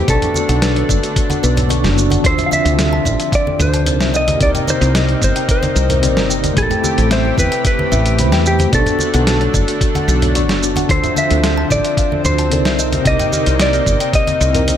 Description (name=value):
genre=sunset chillout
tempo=111 BPM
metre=4/4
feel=straight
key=unclear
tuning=A4 = 439 Hz
part: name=mellow electric guitar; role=melody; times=0.0-14.8 s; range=G4 to F5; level=-19 LUFS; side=equal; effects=spring reverb, digital delay
part: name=tine electric piano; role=accompaniment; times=0.0-14.8 s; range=C3 to E6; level=-21 LUFS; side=equal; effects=medium stereo tremolo, auto-pan, digital delay
part: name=lush unison pad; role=sustained chords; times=0.0-14.8 s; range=C3 to G4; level=-23 LUFS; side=equal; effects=chorus
part: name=kalimba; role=arpeggios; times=0.0-14.8 s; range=F#4 to A5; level=-25 LUFS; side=left 6 dB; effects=digital delay
part: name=woody fretless electric bass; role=bass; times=0.1-14.7 s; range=F#1 to E2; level=-16 LUFS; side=equal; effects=wide subtle chorus
part: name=dusty soul sampler-style drum kit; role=drums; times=0.1-14.8 s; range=hi-hat, shaker, snare drum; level=-21 LUFS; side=equal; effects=none
part: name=electronic kick drum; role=drums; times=0.1-14.2 s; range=none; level=-18 LUFS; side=equal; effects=none
part: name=congas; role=percussion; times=0.2-14.8 s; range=none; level=-24 LUFS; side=right 1 dB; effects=none
room=light reverb, digital ambience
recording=none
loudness=-12 LUFS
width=side -10 dB against mid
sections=0.0-14.8 A section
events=none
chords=0.1 Bm9; 2.2 Dm9; 4.1 Cm9; 6.6 Am9; 8.7 Bm9; 10.9 Dm9; 12.8 Cm9